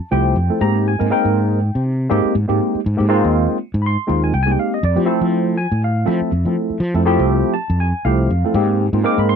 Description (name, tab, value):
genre	jazz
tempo	121 BPM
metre	4/4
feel	swing 56% on 16ths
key	unclear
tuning	A4 = 440 Hz
part	tine electric piano	accompaniment	0.0-9.4 s	F3 to D6	-18 LUFS	equal	medium stereo tremolo, wide subtle chorus
part	fretless electric bass	bass	0.1-9.4 s	C2 to F3	-18 LUFS	equal	none
room	little or no reverb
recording	dry, close 1970s-style studio recording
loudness	-15 LUFS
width	side -7 dB against mid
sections	0.0-9.4 A section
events	none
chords	0.0 Fmaj9; 0.6 Abmaj9; 4.8 Fmaj9; 8.5 Abmaj9